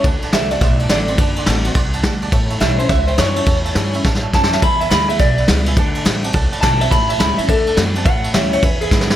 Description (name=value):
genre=rockabilly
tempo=210 BPM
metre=4/4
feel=swing 64% on 8ths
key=unclear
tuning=A4 = 442 Hz
part: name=electric guitar through a small old amp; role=melody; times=0.0-9.2 s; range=G#4 to B5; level=-19 LUFS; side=right 1 dB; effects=spring reverb, analog delay
part: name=picked steel-string acoustic guitar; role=accompaniment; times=0.0-9.2 s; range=E2 to F#4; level=-24 LUFS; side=left 4 dB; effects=none
part: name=upright bass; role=bass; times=0.0-9.2 s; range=F#1 to A2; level=-20 LUFS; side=equal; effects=none
part: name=vintage brush drum kit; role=drums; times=0.0-9.2 s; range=kick drum, ride cymbal, snare drum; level=-16 LUFS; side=equal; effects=none
part: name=tack piano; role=accompaniment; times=0.1-9.2 s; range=B4 to C6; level=-28 LUFS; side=right 8 dB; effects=none
room=light reverb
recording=none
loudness=-13 LUFS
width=side -12 dB against mid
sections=0.0-9.2 A section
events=drum fill 4.1-4.6, 8.9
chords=0.0 D7; 2.3 A7; 4.6 E7; 5.8 D7; 6.9 A7; 7.5 D7; 8.1 A7; 8.6 E7